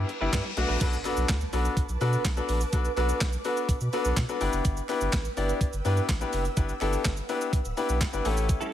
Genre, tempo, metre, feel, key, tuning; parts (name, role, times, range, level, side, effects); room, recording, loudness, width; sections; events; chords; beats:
dance-pop; 125 BPM; 4/4; straight; A4 = 435 Hz
bright concert grand piano; accompaniment; 0.0-8.6 s; G3 to D5; -29 LUFS; left 4 dB; sidechain pumping
ethereal airy pad; sustained chords; 0.0-8.7 s; A4 to E6; -36 LUFS; right 6 dB; ensemble chorus, built-in reverb, sidechain pumping
direct-recorded clean electric guitar; riff; 0.0-0.9, 8.5-8.7 s; G3 to B4; -36 LUFS; right 4 dB; ensemble chorus
saturated sub bass; bass; 0.0-8.6 s; D1 to B2; -28 LUFS; equal; sidechain pumping
reverse cymbal and impact; sound effects; 0.0-2.7 s; -38 LUFS; left 2 dB
clean 12-bit digital drum machine; drums; 0.1-8.7 s; crash cymbal, handclaps, hi-hat, kick drum, shaker, snare drum; -30 LUFS; equal
group handclap; percussion; 1.0-8.1 s; -46 LUFS; right 5 dB
light reverb; -24 LUFS; side -11 dB against mid
0.8-8.7 A section
reverse cymbal 0.0-0.8; impact 0.8-2.7
0.0 G6; 0.6 Bm7; 4.4 G6
0.33 | 0.81 1.29 1.77 2.25 | 2.73 3.21 3.69 4.17 | 4.65 5.13 5.61 6.09 | 6.57 7.05 7.53 8.01 | 8.49